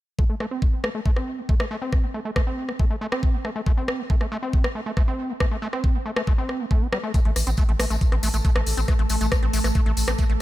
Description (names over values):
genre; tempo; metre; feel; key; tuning
psychedelic trance; 138 BPM; 4/4; straight; A minor; A4 = 440 Hz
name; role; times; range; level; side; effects
overdriven acid bass; riff; 0.2-10.3 s; G3 to C4; -30 LUFS; right 1 dB; distortion, auto-pan, sidechain pumping, digital delay
electronic kick drum; drums; 0.2-10.3 s; none; -20 LUFS; equal; studio reverb
garage drum kit; drums; 0.4-10.4 s; hi-hat, rim click; -29 LUFS; left 1 dB; studio reverb
evolving wavetable pad; sustained chords; 7.5-10.4 s; A3 to A4; -31 LUFS; equal; phaser, built-in reverb, sidechain pumping
tambourine; percussion; 7.1-10.3 s; none; -33 LUFS; left 4 dB; none
round analog bass; bass; 7.3-10.4 s; A1; -23 LUFS; equal; none
room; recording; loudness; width
little or no reverb; none; -21 LUFS; side -16 dB against mid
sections
0.2-10.4 A section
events
filter sweep on acid bass 0.2-10.4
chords
0.2 Am